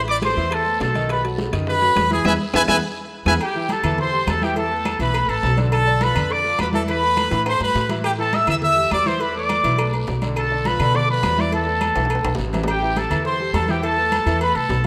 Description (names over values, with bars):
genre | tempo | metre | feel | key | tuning
latin, salsa | 207 BPM | 4/4 | straight | A minor from 3.4 s | A4 = 440 Hz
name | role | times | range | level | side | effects
warm grand piano | accompaniment | 0.0-14.9 s | D3 to E5 | -30 LUFS | equal | none
upright bass | bass | 0.0-14.9 s | A1 to B2 | -27 LUFS | equal | none
brilliant trumpet section | melody | 0.1-14.8 s | G4 to E6 | -22 LUFS | equal | none
bongos and cowbell | percussion | 0.1-14.9 s | none | -37 LUFS | equal | none
congas | percussion | 0.1-14.9 s | none | -31 LUFS | equal | none
timbales and agogo bells | percussion | 0.1-14.9 s | none | -33 LUFS | equal | none
claves | percussion | 0.2-12.2 s | none | -38 LUFS | equal | none
guiro | percussion | 0.2-14.9 s | none | -42 LUFS | equal | none
room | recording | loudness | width
moderate lush hall reverb, RT60 2.4 s | rough home demo mix | -20 LUFS | mono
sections
0.0-3.4 A section; 3.4-12.7 B section; 12.7-14.9 B section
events
band accent 2.3-3.4; drum fill 2.5-3.4, 7.3-8.0, 12.0-12.7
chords
0.0 Amadd9; 1.1 B7; 2.3 E; 3.4 Am7; 4.6 E7sus4; 5.7 Bm7b5; 6.9 Esus4; 8.0 Am7; 9.2 E7sus4; 10.4 Bm7b5; 11.5 Esus4; 12.7 Am7; 13.8 Esus4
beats
0.22 0.51 0.80 | 1.09 1.38 1.67 1.96 | 2.25 2.54 2.83 3.12 | 3.41 3.70 3.99 4.28 | 4.56 4.85 5.14 5.43 | 5.72 6.01 6.30 6.59 | 6.88 7.17 7.46 7.75 | 8.04 8.33 8.62 8.91 | 9.20 9.49 9.78 10.07 | 10.36 10.65 10.94 11.23 | 11.52 11.81 12.10 12.39 | 12.68 12.97 13.26 13.54 | 13.83 14.12 14.41 14.70